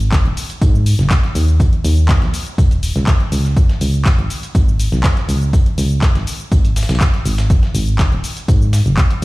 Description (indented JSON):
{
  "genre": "piano house",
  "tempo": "122 BPM",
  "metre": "4/4",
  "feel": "straight",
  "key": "unclear",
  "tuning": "A4 = 440 Hz",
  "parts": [
    { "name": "solid FM bass", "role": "bass", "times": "0.0-9.2 s", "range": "D#1 to G#2", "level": "-15 LUFS", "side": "equal", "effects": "sidechain pumping" },
    { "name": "punchy analog drum machine", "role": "drums", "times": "0.0-9.2 s", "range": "handclaps, hi-hat, shaker", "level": "-24 LUFS", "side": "left 1 dB", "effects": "overdrive" },
    { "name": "dusty soul sampler-style drum kit", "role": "drums", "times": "0.1-9.2 s", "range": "hi-hat, snare drum, tambourine", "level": "-32 LUFS", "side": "equal", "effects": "high-pass filter on snare, sidechain pumping on perc, high-pass filter on perc, sidechain pumping on hats, high-pass filter on hats, high-pass filter on room" },
    { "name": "electronic kick drum", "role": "drums", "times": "0.1-9.1 s", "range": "none", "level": "-13 LUFS", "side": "equal", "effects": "overdrive" }
  ],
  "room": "digital ambience",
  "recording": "played on a big sound system in a bare room, stone room reverb",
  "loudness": "-12 LUFS",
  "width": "side -20 dB against mid",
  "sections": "0.0-9.2 A section",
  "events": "none",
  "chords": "none",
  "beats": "0.12 0.62 1.11 | 1.60 2.09 2.58 3.08 | 3.57 4.06 4.55 5.04 | 5.53 6.03 6.52 7.01 | 7.50 7.99 8.48 8.98"
}